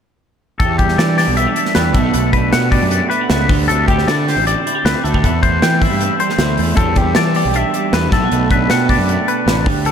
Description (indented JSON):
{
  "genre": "math rock and midwest emo",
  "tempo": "156 BPM",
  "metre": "4/4",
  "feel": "straight",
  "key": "E minor",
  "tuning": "A4 = 440 Hz",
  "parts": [
    { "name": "electric guitar through a small old amp", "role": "accompaniment", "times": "0.6-9.9 s", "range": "E2 to G4", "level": "-20 LUFS", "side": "right 8 dB", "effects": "wide subtle chorus" },
    { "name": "twangy electric guitar", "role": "arpeggios", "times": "0.6-9.9 s", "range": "G4 to G5", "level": "-17 LUFS", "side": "left 5 dB", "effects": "analog chorus, ping-pong delay" },
    { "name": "fuzz fingered electric bass", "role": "bass", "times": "0.6-9.9 s", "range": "A1 to E3", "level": "-18 LUFS", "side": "equal", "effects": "overdrive" },
    { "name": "modern studio drum kit", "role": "drums", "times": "0.6-9.9 s", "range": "hi-hat, kick drum, snare drum", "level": "-18 LUFS", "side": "equal", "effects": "none" }
  ],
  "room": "moderate huge ambient reverb, RT60 5.1 s",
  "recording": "dreamy mix soaked in reverb",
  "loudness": "-12 LUFS",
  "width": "side -8 dB against mid",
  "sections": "0.6-9.9 A section",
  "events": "none",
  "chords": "0.6 Em7; 2.0 Bm7; 3.5 D7sus4; 5.2 C6/E; 6.8 Em7; 8.1 Bm7"
}